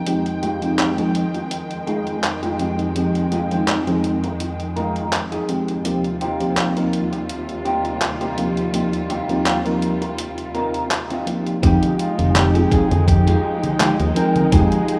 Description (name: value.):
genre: vaporwave.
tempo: 83 BPM.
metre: 4/4.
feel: swing 54% on 16ths.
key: unclear.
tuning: A4 = 442 Hz.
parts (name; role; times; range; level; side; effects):
muted studio string section; sustained chords; 0.0-15.0 s; Eb2 to G5; -28 LUFS; equal; low-pass filter.
FM electric piano with soft pad layer; accompaniment; 0.1-14.7 s; F3 to G5; -24 LUFS; equal; lush chorus, cassette tape, tape echo.
detuned 8-bit digital drum machine; drums; 0.1-15.0 s; congas, handclaps, hi-hat; -26 LUFS; equal; none.
electric guitar at the edge of break-up; riff; 0.4-15.0 s; Ab3 to Bb4; -28 LUFS; equal; lush chorus, low-pass filter, tape echo.
warm flugelhorn; melody; 11.6-15.0 s; F4 to Bb4; -28 LUFS; equal; none.
fingered electric bass; bass; 11.6-14.7 s; F1 to F2; -20 LUFS; equal; none.
electronic kick drum; drums; 11.6-14.7 s; none; -20 LUFS; equal; none.
room: moderate lush hall reverb, RT60 2.8 s.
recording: rough home demo mix, small room ambience.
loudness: -20 LUFS.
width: mono.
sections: 0.0-11.6 A section; 11.6-15.0 B section.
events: none.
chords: 0.1 Fm9; 5.8 Eb69; 11.6 Fm9.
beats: | 0.07 0.79 1.51 2.23 | 2.96 3.68 4.40 5.13 | 5.85 6.57 7.29 8.02 | 8.74 9.46 10.19 10.91 | 11.63 12.36 13.08 13.80 | 14.52.